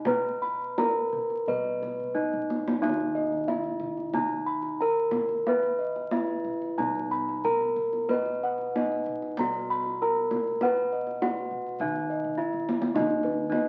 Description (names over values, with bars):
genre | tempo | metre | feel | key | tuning
Javanese gamelan | 83-107 BPM | 4/4 | straight | Eb pelog | A4 = 438 Hz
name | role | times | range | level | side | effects
gamelan-type bronze metallophone | melody | 0.0-13.7 s | Eb4 to Cb5 | -32 LUFS | equal | none
gamelan-type bossed gongs | bass | 0.0-13.7 s | Eb2 to Cb5 | -35 LUFS | equal | none
gamelan-type bossed gongs | arpeggios | 0.1-13.7 s | Cb5 to Cb6 | -33 LUFS | equal | none
kendang | percussion | 0.1-13.6 s | none | -36 LUFS | equal | none
room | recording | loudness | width
moderate studio reverb, RT60 0.9 s | very old 78 rpm record, vinyl crackle | -28 LUFS | mono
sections
0.0-2.8 A section; 2.8-13.0 B section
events
drum fill 2.0-2.8, 12.2-13.0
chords
none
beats
| 0.06 0.78 1.48 2.16 | 2.83 3.48 4.14 4.80 | 5.46 6.12 6.78 7.44 | 8.10 8.75 9.39 10.02 | 10.63 11.22 11.81 12.39 | 12.95 13.51